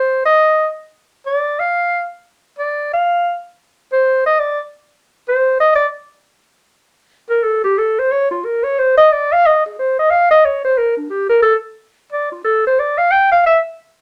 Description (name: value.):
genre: jazz.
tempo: 179 BPM.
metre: 4/4.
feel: swing 63% on 8ths.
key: F major.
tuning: A4 = 440 Hz.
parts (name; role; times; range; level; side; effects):
breathy clarinet; solo; 0.0-13.6 s; D4 to G5; -15 LUFS; equal; none.
room: wet studio ambience, RT60 0.5 s.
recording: none.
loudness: -15 LUFS.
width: mono.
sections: 0.0-6.7 A section; 6.7-14.0 B section.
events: clarinet solo 6.7-14.0.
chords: none.